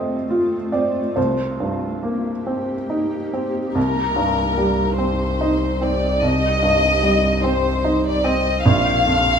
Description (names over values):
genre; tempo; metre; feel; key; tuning
neoclassical piano and strings; 45-50 BPM (dotted quarters); 6/8; rubato; C dorian; A4 = 440 Hz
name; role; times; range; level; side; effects
felt-muted upright piano; accompaniment; 0.0-9.4 s; Bb1 to Eb5; -20 LUFS; right 2 dB; none
shimmering ambient pad; sustained chords; 0.0-9.4 s; A3 to Ab4; -28 LUFS; equal; chorus, built-in reverb
dark chamber violin section; melody; 3.7-9.4 s; Bb4 to F5; -19 LUFS; left 2 dB; none
rich double bass; bass; 3.8-9.4 s; Bb1 to C2; -24 LUFS; left 1 dB; none
room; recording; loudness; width
moderate recital hall reverb, RT60 1.8 s; minimal, uncompressed stereo recording; -17 LUFS; side -7 dB against mid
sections
0.0-3.8 A section; 3.8-9.4 A section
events
none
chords
0.0 F; 1.2 Cm7; 8.7 Bb7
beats
| 1.17 2.47 | 3.76 4.99 | 6.23 7.45 | 8.65